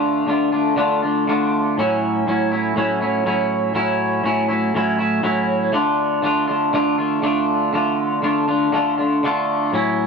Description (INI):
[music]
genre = rock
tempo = 121 BPM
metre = 4/4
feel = straight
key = unclear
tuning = A4 = 438 Hz
[part]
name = twangy electric guitar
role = solo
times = 0.0-10.1 s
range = A2 to F4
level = -17 LUFS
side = equal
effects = lush chorus
[sound]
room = light reverb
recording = dry, close 1970s-style studio recording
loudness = -17 LUFS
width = side -5 dB against mid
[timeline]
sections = 0.0-10.1 A section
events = none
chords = 0.0 Dm; 1.8 A6; 5.8 Dm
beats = 0.29 0.78 1.28 | 1.78 2.27 2.77 3.27 | 3.76 4.26 4.75 5.25 | 5.75 6.25 6.75 7.25 | 7.75 8.25 8.75 9.25 | 9.75